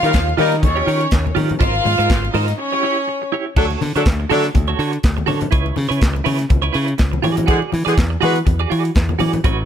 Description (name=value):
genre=disco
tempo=123 BPM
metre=4/4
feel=swing 56% on 16ths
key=unclear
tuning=A4 = 439 Hz
part: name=warm studio violin section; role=second line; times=0.0-3.3 s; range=Db4 to F5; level=-19 LUFS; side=left 1 dB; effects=none
part: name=clean electric guitar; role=accompaniment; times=0.0-9.7 s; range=Fb4 to D5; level=-23 LUFS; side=right 9 dB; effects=tremolo
part: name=clear horn section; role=stabs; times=0.0-0.5, 3.6-4.5, 7.5-8.4 s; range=D3 to B4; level=-20 LUFS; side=left 1 dB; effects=none
part: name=modern bright fingered electric bass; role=bass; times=0.0-9.6 s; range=Ab1 to E3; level=-19 LUFS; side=equal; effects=none
part: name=tight funk drum kit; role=drums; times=0.0-9.6 s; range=crash cymbal, handclaps, hi-hat, kick drum, snare drum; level=-18 LUFS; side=equal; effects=none
part: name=congas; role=percussion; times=0.1-9.6 s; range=none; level=-26 LUFS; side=left 5 dB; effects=none
room=little or no reverb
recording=none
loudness=-15 LUFS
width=side -9 dB against mid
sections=0.0-3.6 A section; 3.6-9.7 A section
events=break 2.6-3.6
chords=0.0 Eb9; 1.6 Ab69; 2.6 Dbdim; 3.6 Dmaj7; 5.5 C#m7; 7.2 E9